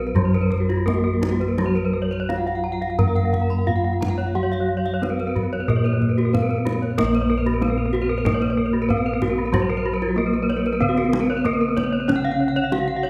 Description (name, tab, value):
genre	Balinese gamelan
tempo	84-94 BPM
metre	4/4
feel	straight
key	Bb pelog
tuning	A4 = 440 Hz
part	gamelan-type bronze metallophone	melody	0.0-13.1 s	Gb3 to Bb4	-26 LUFS	equal	none
part	gamelan-type bronze metallophone	accompaniment	0.0-13.1 s	Db3 to Cb4+35c	-32 LUFS	equal	none
part	gamelan-type bronze metallophone	arpeggios	0.0-13.0 s	F4 to Bb5	-30 LUFS	equal	none
part	gamelan-type bossed gongs	bass	0.0-13.1 s	Bb1 to Bb4	-27 LUFS	equal	none
part	gamelan-type bronze metallophone	arpeggios	0.1-13.1 s	F4 to Cb6+35c	-31 LUFS	equal	none
part	kendang	percussion	0.2-13.1 s	none	-31 LUFS	equal	none
room	moderate recital hall reverb, RT60 1.5 s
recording	none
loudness	-21 LUFS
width	mono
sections	0.0-7.0 A section; 7.0-13.1 B section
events	none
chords	none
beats	0.15 0.87 | 1.58 2.29 2.99 3.68 | 4.36 5.03 5.69 6.34 | 6.98 7.62 8.26 8.89 | 9.53 10.17 10.81 11.44 | 12.08 12.72